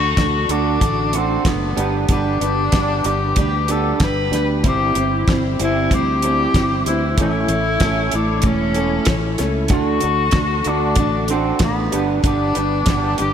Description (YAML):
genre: folk rock and heartland rock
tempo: 95 BPM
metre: 4/4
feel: straight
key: D mixolydian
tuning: A4 = 440 Hz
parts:
  - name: clear tenor saxophone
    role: melody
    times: 0.0-13.3 s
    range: B3 to B4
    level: -21 LUFS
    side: left 4 dB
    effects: slapback echo
  - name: clear upright piano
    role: accompaniment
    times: 0.0-13.3 s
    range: D4 to D5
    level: -33 LUFS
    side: left 6 dB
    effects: none
  - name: picked steel-string acoustic guitar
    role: accompaniment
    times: 0.0-13.3 s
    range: A2 to C5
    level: -25 LUFS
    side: left 3 dB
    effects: slapback echo
  - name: muted studio string section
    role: sustained chords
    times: 0.0-13.3 s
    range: A3 to C#5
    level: -31 LUFS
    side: left 2 dB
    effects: none
  - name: electric guitar through a small old amp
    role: riff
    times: 0.0-13.3 s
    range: A2 to F#4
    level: -23 LUFS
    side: right 8 dB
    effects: none
  - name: fingered electric bass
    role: bass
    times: 0.0-13.3 s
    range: E1 to D2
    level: -23 LUFS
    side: equal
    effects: none
  - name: damped 70s drum kit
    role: drums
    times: 0.2-13.3 s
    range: hi-hat, kick drum, snare drum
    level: -20 LUFS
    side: equal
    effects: none
room: moderate lush hall reverb, RT60 2.8 s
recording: big arena sound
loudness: -16 LUFS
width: side -8 dB against mid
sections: 0.0-13.3 A section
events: none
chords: 0.0 D; 1.8 G; 4.7 C/G; 7.2 A; 9.7 D; 11.9 G